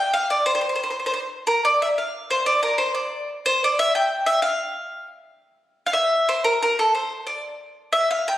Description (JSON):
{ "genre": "italian folk", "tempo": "121 BPM (dotted quarters)", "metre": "6/8", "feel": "rubato", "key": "unclear", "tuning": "A4 = 440 Hz", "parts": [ { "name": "bowl-back mandolin", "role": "solo", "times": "0.0-8.3 s", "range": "A4 to G5", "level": "-19 LUFS", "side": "equal", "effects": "none" } ], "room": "wet recital hall reverb, RT60 1.6 s", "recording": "recorded on a phone in the room, studio reverb", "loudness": "-19 LUFS", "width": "side -13 dB against mid", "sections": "0.0-5.4 A section; 5.4-8.4 B section", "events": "none", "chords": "none" }